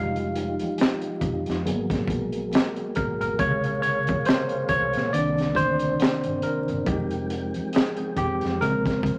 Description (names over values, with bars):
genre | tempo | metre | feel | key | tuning
R&B, neo-soul | 69 BPM | 4/4 | swing 58% on 16ths | unclear | A4 = 440 Hz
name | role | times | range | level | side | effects
tine electric piano | accompaniment | 0.0-9.2 s | C3 to F5 | -28 LUFS | equal | overdrive
percussive tonewheel organ | sustained chords | 0.0-9.2 s | C3 to G5 | -33 LUFS | equal | slow rotary speaker, chorus vibrato
vintage muted fingered electric bass | bass | 0.0-9.2 s | F1 to Bb2 | -36 LUFS | equal | none
congas | percussion | 0.1-9.2 s | none | -41 LUFS | equal | none
crunchy breakbeat drum kit | drums | 0.2-9.2 s | hi-hat, kick drum, snare drum | -29 LUFS | equal | none
room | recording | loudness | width
moderate studio reverb, RT60 0.8 s | vinyl crackle | -25 LUFS | mono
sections
0.0-9.2 A section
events
tine electric piano solo 0.0-9.2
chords
0.0 Fm9; 1.6 Abm9; 3.4 Bbm9; 5.1 Cm9; 6.9 Fm9; 8.6 Bbm9